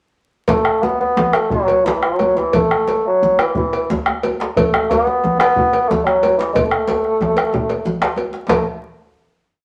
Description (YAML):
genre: west african traditional, West African drum ensemble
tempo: 116-129 BPM (dotted quarters)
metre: 12/8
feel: straight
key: unclear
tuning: A4 = 440 Hz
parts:
  - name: mellow bassoon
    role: melody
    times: 0.5-8.6 s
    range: E3 to B3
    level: -18 LUFS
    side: equal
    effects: none
  - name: bombo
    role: percussion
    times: 0.5-8.6 s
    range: none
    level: -24 LUFS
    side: equal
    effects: none
  - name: congas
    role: percussion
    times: 0.5-8.6 s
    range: none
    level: -28 LUFS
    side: equal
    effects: none
  - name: cowbell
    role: percussion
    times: 0.5-8.6 s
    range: none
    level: -24 LUFS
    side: equal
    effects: none
  - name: djembe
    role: percussion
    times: 0.5-8.6 s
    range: none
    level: -29 LUFS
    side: equal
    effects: none
  - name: djembe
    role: percussion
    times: 0.5-8.6 s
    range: none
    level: -28 LUFS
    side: equal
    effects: none
room: wet studio reverb, RT60 0.9 s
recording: vinyl crackle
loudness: -17 LUFS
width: mono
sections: 0.5-8.5 A section; 8.5-9.6 final note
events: speeding up 0.5-9.6; drum fill 6.6-8.5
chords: none